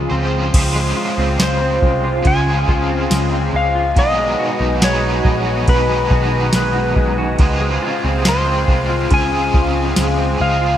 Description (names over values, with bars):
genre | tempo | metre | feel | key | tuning
dream pop | 70 BPM | 4/4 | straight | Db major | A4 = 439 Hz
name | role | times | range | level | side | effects
cranked stack guitar | accompaniment | 0.0-10.8 s | Cb3 to C5 | -22 LUFS | right 2 dB | overdrive, tremolo, ensemble chorus
phased analog pad | sustained chords | 0.0-10.8 s | F3 to Ab5 | -23 LUFS | equal | phaser, chorus
semi-hollow electric guitar | arpeggios | 0.0-10.8 s | Cb3 to Ab4 | -22 LUFS | left 2 dB | ensemble chorus, digital delay
vintage muted picked electric bass | bass | 0.0-10.8 s | Bb1 to Db2 | -20 LUFS | equal | none
soft vintage rhythm box | drums | 0.5-10.2 s | crash cymbal, kick drum, ride cymbal, snare drum, tambourine | -17 LUFS | equal | overdrive, gated reverb
clean lap steel guitar | melody | 1.4-10.8 s | Cb5 to Ab5 | -20 LUFS | left 1 dB | wide subtle chorus, digital delay
room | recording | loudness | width
moderate lush hall reverb, RT60 2.7 s | bright 1980s-style digital production | -14 LUFS | side -11 dB against mid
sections
0.5-10.8 A section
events
none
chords
0.0 Dbmaj7; 4.0 Cb6; 7.4 Dbmaj7